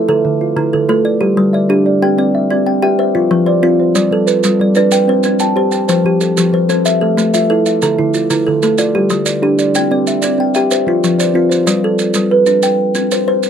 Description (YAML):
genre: southern african traditional, mbira-style interlocking cycle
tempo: 124 BPM (dotted quarters)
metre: 12/8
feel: straight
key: G mixolydian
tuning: A4 = 440 Hz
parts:
  - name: kalimba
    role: arpeggios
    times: 0.0-13.5 s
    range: D3 to G5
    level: -13 LUFS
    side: left 2 dB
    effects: none
  - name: kalimba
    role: arpeggios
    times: 0.0-12.0 s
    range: D3 to A5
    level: -16 LUFS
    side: right 4 dB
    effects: none
  - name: maracas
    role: percussion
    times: 4.0-13.5 s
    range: none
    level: -22 LUFS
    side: right 7 dB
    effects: none
room: moderate booth ambience, RT60 0.2 s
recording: none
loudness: -11 LUFS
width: side -8 dB against mid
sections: 0.0-11.7 A section; 11.7-13.5 B section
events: none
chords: 0.1 Dm; 1.0 G5; 2.0 C; 3.0 F5; 3.9 G; 4.9 C5; 5.9 F; 6.8 Am; 7.8 Dm; 8.8 G5; 9.7 C; 10.7 F5; 11.7 G; 12.6 C5